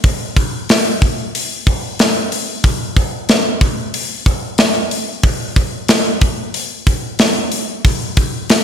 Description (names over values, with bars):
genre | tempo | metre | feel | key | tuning
metal | 92 BPM | 4/4 | straight | none | none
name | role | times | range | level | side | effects
tight metal drum kit | drums | 0.0-8.6 s | hi-hat, kick drum, snare drum | -14 LUFS | equal | none
room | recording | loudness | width
moderate lush hall reverb, RT60 1.9 s | none | -14 LUFS | side -8 dB against mid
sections
0.0-8.6 A section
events
none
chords
none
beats
| 0.04 0.69 1.34 1.99 | 2.64 3.29 3.95 4.60 | 5.25 5.90 6.55 7.20 | 7.86 8.51